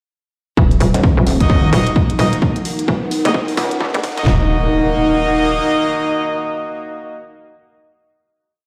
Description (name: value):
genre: bass house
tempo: 130 BPM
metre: 4/4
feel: swing 60% on 16ths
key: Eb minor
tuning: A4 = 440 Hz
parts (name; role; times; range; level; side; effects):
- dark analog pad; sustained chords; 0.6-7.2 s; Eb4 to Gb5; -23 LUFS; equal; chorus, sidechain pumping
- hollow knocking FM bass; bass; 0.6-5.6 s; Eb1 to Gb1; -20 LUFS; equal; sidechain pumping
- house drum kit; drums; 0.6-4.4 s; handclaps, kick drum, snare drum, toms; -19 LUFS; equal; overdrive
- riser and impact; sound effects; 2.1-7.3 s; none; -30 LUFS; equal; none
- electronic hi-hat; drums; 0.7-4.2 s; none; -31 LUFS; equal; none
- pulsing pluck wobble bass; bass; 0.9-3.9 s; Eb1 to Db2; -19 LUFS; equal; chorus, overdrive, sidechain pumping
- brilliant horn section; stabs; 1.4-7.2 s; Bb3 to Eb5; -22 LUFS; equal; sidechain pumping, tape echo
room: light reverb, digital ambience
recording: played on a big sound system in a bare room, stone room reverb, high-pass filter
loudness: -16 LUFS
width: mono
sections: 0.6-4.3 build; 4.3-8.0 final chord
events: build-up 0.6-4.3; filter sweep on analog synth pad 0.6-4.3; filter sweep 0.6-4.3; riser 2.1-4.3; drum fill 2.4-4.3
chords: 0.6 Ebm